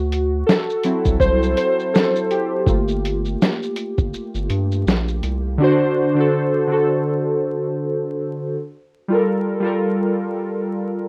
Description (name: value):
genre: lo-fi hip hop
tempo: 82 BPM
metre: 4/4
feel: swing 59% on 16ths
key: G dorian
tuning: A4 = 440 Hz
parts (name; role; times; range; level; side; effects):
- warbly lo-fi synth keys; accompaniment; 0.0-11.1 s; D3 to C5; -21 LUFS; equal; chorus, cassette tape, low-pass filter
- round analog bass; bass; 0.0-5.6 s; G1 to G2; -24 LUFS; equal; none
- lo-fi sampler-style drum kit; drums; 0.1-5.4 s; hi-hat, kick drum, shaker, snare drum; -22 LUFS; equal; none
room: moderate studio reverb, RT60 0.6 s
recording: rough home demo mix, vinyl crackle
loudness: -20 LUFS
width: mono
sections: 0.0-5.6 A section; 5.6-11.1 B section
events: synth keys solo 0.0-5.6; kick muted 4.1-5.6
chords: 0.0 D7; 2.7 Gm9; 5.6 D7; 8.5 Gm9